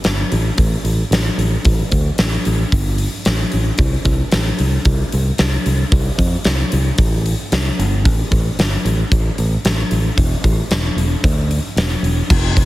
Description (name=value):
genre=hard rock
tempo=113 BPM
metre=4/4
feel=straight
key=unclear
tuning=A4 = 440 Hz
part: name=fingered electric bass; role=bass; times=0.0-12.6 s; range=E1 to F2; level=-17 LUFS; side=equal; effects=none
part: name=huge arena drum kit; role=drums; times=0.0-12.7 s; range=crash cymbal, hi-hat, kick drum, snare drum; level=-17 LUFS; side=equal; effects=none
room=little or no reverb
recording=heavily compressed radio sound, multiband compression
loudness=-14 LUFS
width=side -17 dB against mid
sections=0.0-12.3 A section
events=none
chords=none